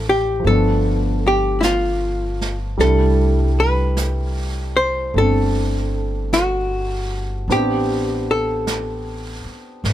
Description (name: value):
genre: jazz ballad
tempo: 51 BPM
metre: 4/4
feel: swing 67% on 8ths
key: unclear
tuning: A4 = 440 Hz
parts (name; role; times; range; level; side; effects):
- archtop guitar, miked and amplified; melody; 0.0-9.8 s; E4 to C5; -20 LUFS; left 1 dB; none
- warm concert grand piano; accompaniment; 0.0-9.9 s; F3 to G4; -24 LUFS; right 2 dB; none
- upright bass; bass; 0.0-9.9 s; G1 to C2; -21 LUFS; equal; none
- jazz brush drum kit; drums; 0.5-9.9 s; brushed snare drum, hi-hat, snare drum; -30 LUFS; right 4 dB; none
room: little or no reverb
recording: close, detailed microphones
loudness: -17 LUFS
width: side -12 dB against mid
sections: 0.0-9.9 A section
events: none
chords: 0.4 G7; 2.8 C69; 7.5 Am11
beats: 0.44 1.62 | 2.79 3.97 5.14 6.32 | 7.49 8.67 9.84